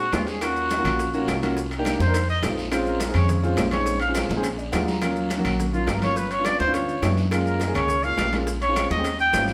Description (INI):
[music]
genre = Afro-Cuban jazz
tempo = 209 BPM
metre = 4/4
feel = straight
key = Bb minor, Eb minor from 5.0 s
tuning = A4 = 440 Hz
[part]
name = mellow trumpet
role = melody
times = 0.0-9.5 s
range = F4 to G5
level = -27 LUFS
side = equal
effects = none
[part]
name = warm grand piano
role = accompaniment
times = 0.0-9.5 s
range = Gb3 to Bb5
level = -28 LUFS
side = equal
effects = none
[part]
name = upright bass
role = bass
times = 0.0-9.5 s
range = G1 to Gb2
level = -29 LUFS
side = equal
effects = none
[part]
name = bongos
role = percussion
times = 0.1-9.5 s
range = none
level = -38 LUFS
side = equal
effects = none
[part]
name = claves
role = percussion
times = 0.1-9.5 s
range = none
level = -41 LUFS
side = equal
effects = none
[part]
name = congas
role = percussion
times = 0.1-9.5 s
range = none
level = -35 LUFS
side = equal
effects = none
[part]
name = guiro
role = percussion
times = 0.1-9.5 s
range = none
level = -42 LUFS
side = equal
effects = none
[part]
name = maracas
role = percussion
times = 0.1-9.5 s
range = none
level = -44 LUFS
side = equal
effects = none
[part]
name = timbales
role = percussion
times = 0.1-9.5 s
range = none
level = -35 LUFS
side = equal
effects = none
[sound]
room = wet stone room reverb, RT60 1.0 s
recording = band playing live in one room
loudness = -23 LUFS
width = mono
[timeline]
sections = 0.0-5.0 A section; 5.0-9.5 A section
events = trumpet solo 0.0-9.5; grand piano fill 4.4-5.0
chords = 0.4 Ebm7; 1.6 Cm7; 2.1 F7; 2.7 Bbm7; 4.4 Bb7b13; 5.0 Ebm9; 6.2 G7#11; 7.3 Gbmaj9; 8.5 Bbm9